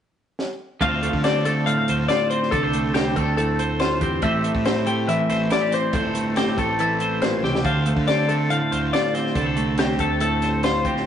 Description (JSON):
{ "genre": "math rock and midwest emo", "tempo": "140 BPM", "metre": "4/4", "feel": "straight", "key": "D minor", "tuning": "A4 = 440 Hz", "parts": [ { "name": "compact cocktail drum kit", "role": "drums", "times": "0.4-11.0 s", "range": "hi-hat, kick drum, snare drum", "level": "-27 LUFS", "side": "right 1 dB", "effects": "none" }, { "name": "twelve-string electric guitar", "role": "accompaniment", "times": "0.8-11.1 s", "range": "A2 to C5", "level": "-23 LUFS", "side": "right 2 dB", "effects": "none" }, { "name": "twelve-string electric guitar", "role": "arpeggios", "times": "0.8-11.1 s", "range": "G4 to F5", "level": "-23 LUFS", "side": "left 4 dB", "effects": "spring reverb" }, { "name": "fuzz picked electric bass", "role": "bass", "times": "0.8-11.0 s", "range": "G1 to D3", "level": "-27 LUFS", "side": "equal", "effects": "overdrive" } ], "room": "moderate stone room reverb, RT60 1.0 s", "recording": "rough rehearsal-room recording, nothing above 10.7 kHz", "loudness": "-19 LUFS", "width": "side -9 dB against mid", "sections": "0.8-11.1 A section", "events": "drum fill 0.4-0.8, 7.4", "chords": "0.0 N.C.; 0.8 Dm7; 4.2 Am7; 7.6 Dm7" }